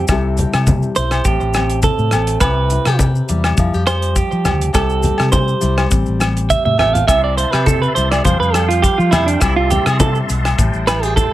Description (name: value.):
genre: highlife guitar band.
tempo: 103 BPM.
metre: 4/4.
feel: swing 53% on 16ths.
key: C major.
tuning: A4 = 439 Hz.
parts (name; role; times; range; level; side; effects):
nylon-string guitar; accompaniment; 0.0-11.3 s; A2 to A4; -22 LUFS; left 4 dB; none.
clean electric guitar; arpeggios; 0.0-11.3 s; D4 to F5; -18 LUFS; right 5 dB; tape echo.
fingered electric bass; bass; 0.0-11.2 s; A1 to F3; -18 LUFS; equal; none.
damped 70s drum kit; drums; 0.1-11.3 s; hi-hat, kick drum, rim click; -19 LUFS; equal; none.
agogo bells; percussion; 0.1-11.0 s; none; -24 LUFS; left 5 dB; none.
congas; percussion; 0.1-11.3 s; none; -21 LUFS; left 1 dB; none.
maracas; percussion; 0.1-11.3 s; none; -28 LUFS; left 5 dB; none.
tonewheel organ; sustained chords; 7.1-11.3 s; E5 to C6; -26 LUFS; equal; slow rotary speaker, chorus vibrato.
room: light reverb.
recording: none.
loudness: -13 LUFS.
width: side -14 dB against mid.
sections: 0.0-11.3 A section.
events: clean electric guitar solo 0.0-11.3; drum fill 6.5-7.1.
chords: 0.1 C6; 1.3 Am7; 2.4 C6; 3.6 Fsus2; 4.8 C6; 5.9 Am7; 7.1 C6; 8.3 Fsus2; 9.4 C6; 10.6 Am7.